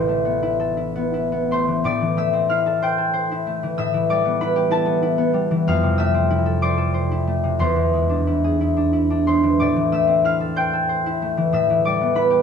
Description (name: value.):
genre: classical, solo harp piece.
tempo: 62 BPM (dotted quarters).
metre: 6/8.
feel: uneven beats, rubato.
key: A minor.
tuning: A4 = 440 Hz.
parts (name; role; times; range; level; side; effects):
concert harp; solo; 0.0-12.4 s; A1 to G6; -17 LUFS; left 1 dB; none.
room: wet stone room reverb, RT60 1.0 s.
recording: heard from further back in the room, lossy compression artefacts.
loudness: -18 LUFS.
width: side -6 dB against mid.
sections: 0.0-1.8 A section; 1.8-12.4 B section.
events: none.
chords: 0.0 Amadd9; 1.8 Am7; 3.8 G69/A; 5.7 Fmaj7; 7.6 Eaug7; 9.6 Am7; 11.5 G69/A.